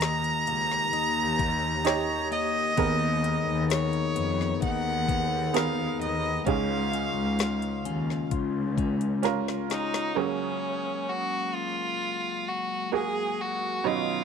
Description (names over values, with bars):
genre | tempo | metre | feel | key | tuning
pop ballad | 65 BPM | 4/4 | straight | F# major | A4 = 442 Hz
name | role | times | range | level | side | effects
rich violin | melody | 0.0-14.2 s | C#4 to A#5 | -29 LUFS | right 1 dB | slapback echo
bright upright piano | accompaniment | 0.0-14.2 s | G#2 to C#5 | -32 LUFS | right 13 dB | none
mellow tonewheel organ | sustained chords | 0.0-14.2 s | D#3 to A#4 | -35 LUFS | left 16 dB | slow rotary speaker
clean electric guitar | arpeggios | 0.0-10.8 s | C#3 to E#4 | -35 LUFS | left 13 dB | none
warm studio cello section | bass | 0.0-9.7 s | C#2 to E#2 | -30 LUFS | equal | none
smooth R&B drum kit | drums | 0.0-10.2 s | hi-hat, kick drum, snare drum | -31 LUFS | left 4 dB | none
room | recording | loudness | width
studio reverb | 1960s-style stereo with parts hard left and right | -25 LUFS | side -6 dB against mid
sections
0.0-10.2 A section; 10.2-14.2 A section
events
drum fill 9.2-10.2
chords
0.0 D#; 2.8 G#madd9/D#; 6.5 C#; 10.2 F#add9